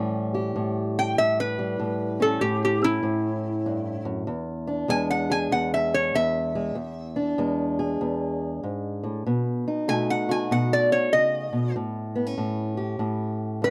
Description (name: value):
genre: acoustic country blues, solo or duo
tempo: 96 BPM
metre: 4/4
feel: swing 64% on 8ths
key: E mixolydian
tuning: A4 = 435 Hz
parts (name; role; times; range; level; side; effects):
- fingerpicked old ladder-braced acoustic guitar; accompaniment; 0.0-13.7 s; E2 to G#4; -28 LUFS; equal; none
- lap resonator guitar; melody; 1.0-13.7 s; E4 to G#5; -26 LUFS; equal; none
room: little or no reverb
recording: dry, close 1970s-style studio recording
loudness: -26 LUFS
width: mono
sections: 0.0-13.7 A section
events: resonator guitar played with a steel bar solo 0.0-13.7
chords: 0.0 A7; 4.3 E7; 9.3 B7; 11.8 A7